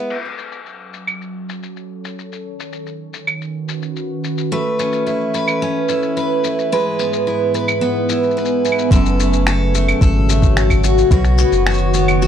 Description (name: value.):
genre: folktronica.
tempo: 109 BPM.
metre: 4/4.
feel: straight.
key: F# dorian.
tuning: A4 = 440 Hz.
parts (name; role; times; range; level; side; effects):
picked steel-string acoustic guitar; arpeggios; 0.0-0.2, 4.5-12.3 s; F#2 to B4; -19 LUFS; equal; ping-pong delay.
warbly tape-like pad; sustained chords; 1.0-12.3 s; G#2 to G#5; -20 LUFS; right 1 dB; chorus, built-in reverb, phaser.
lo-fi sampler-style drum kit; drums; 0.1-12.3 s; claves, crash cymbal, finger snaps, shaker; -23 LUFS; left 1 dB; low-pass filter on perc, low-pass filter on snare, low-pass filter on cymbals.
round analog bass; bass; 8.9-12.3 s; F#1 to B1; -16 LUFS; equal; none.
electronic kick drum; drums; 8.9-11.2 s; none; -14 LUFS; equal; none.
room: moderate studio reverb, RT60 0.6 s.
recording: dark, warm production.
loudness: -14 LUFS.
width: side -9 dB against mid.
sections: 0.1-8.9 A section; 8.9-12.3 B section.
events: filter sweep on ambient pad 0.1-8.9.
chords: 0.1 F#m; 2.3 Badd9; 4.5 Aadd9; 6.7 E/G#; 8.9 F#m; 11.1 Badd9.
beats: | 0.11 0.66 1.21 1.76 | 2.31 2.86 3.41 3.96 | 4.51 5.06 5.61 6.16 | 6.71 7.26 7.81 8.36 | 8.91 9.46 10.02 10.56 | 11.12 11.67 12.22.